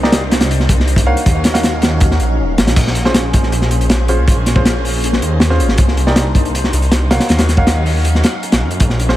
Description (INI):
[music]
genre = drum and bass, jungle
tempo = 159 BPM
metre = 4/4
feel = straight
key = Bb minor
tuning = A4 = 443 Hz
[part]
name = soft string machine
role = sustained chords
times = 0.0-9.2 s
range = Gb3 to F5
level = -22 LUFS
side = left 1 dB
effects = phaser, ensemble chorus, vintage 12-bit sampler grit
[part]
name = warm baby grand piano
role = stabs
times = 0.0-9.2 s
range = Db4 to F5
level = -22 LUFS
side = right 1 dB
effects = dub echo
[part]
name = detuned saw bass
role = bass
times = 0.0-9.2 s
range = Eb1 to Gb2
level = -15 LUFS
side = equal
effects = none
[part]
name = crunchy breakbeat drum kit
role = drums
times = 0.0-9.2 s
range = crash cymbal, hi-hat, kick drum, snare drum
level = -14 LUFS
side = equal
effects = none
[sound]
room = little or no reverb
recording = none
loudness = -11 LUFS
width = side -14 dB against mid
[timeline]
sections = 0.0-2.8 A section; 2.8-9.2 A section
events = drop 0.0-2.8, 2.8-9.2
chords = 0.0 Cm9; 1.3 Ebm9; 2.8 Bbm9; 5.8 Cm9; 7.3 Ebm9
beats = 0.12 0.50 0.88 | 1.26 1.63 2.01 2.39 | 2.77 3.14 3.52 3.90 | 4.28 4.65 5.03 5.41 | 5.79 6.16 6.54 6.92 | 7.29 7.67 8.05 8.43 | 8.80